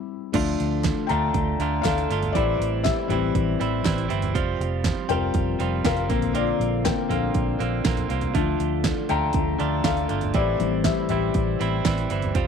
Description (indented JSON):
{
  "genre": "piano-driven pop",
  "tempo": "120 BPM",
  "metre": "4/4",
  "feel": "straight",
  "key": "D minor",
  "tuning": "A4 = 440 Hz",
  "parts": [
    { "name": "felt-muted upright piano", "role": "accompaniment", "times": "0.0-12.4 s", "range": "D3 to Bb5", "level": "-26 LUFS", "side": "left 12 dB", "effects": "none" },
    { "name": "direct-recorded clean electric guitar", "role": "riff", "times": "0.3-12.5 s", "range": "A2 to F4", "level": "-27 LUFS", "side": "right 11 dB", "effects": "none" },
    { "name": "vintage muted fingered electric bass", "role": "bass", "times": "0.3-12.5 s", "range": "F1 to D2", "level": "-27 LUFS", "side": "equal", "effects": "none" },
    { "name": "pop drum kit", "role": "drums", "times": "0.3-12.5 s", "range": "crash cymbal, hi-hat, kick drum, snare drum, toms", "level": "-27 LUFS", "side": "right 3 dB", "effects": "none" },
    { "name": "group handclap", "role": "percussion", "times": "0.8-12.0 s", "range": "none", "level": "-40 LUFS", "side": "left 11 dB", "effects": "none" }
  ],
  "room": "moderate spring reverb, RT60 2.3 s",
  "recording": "1960s-style stereo with parts hard left and right",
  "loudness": "-21 LUFS",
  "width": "side -6 dB against mid",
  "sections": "0.3-12.5 A section",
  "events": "stop 0.0-0.3; felt piano solo 0.3-12.5",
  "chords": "0.3 Dm; 2.3 Am7; 4.3 Fsus2; 6.1 Bbadd9; 8.3 Dm; 10.3 Am7"
}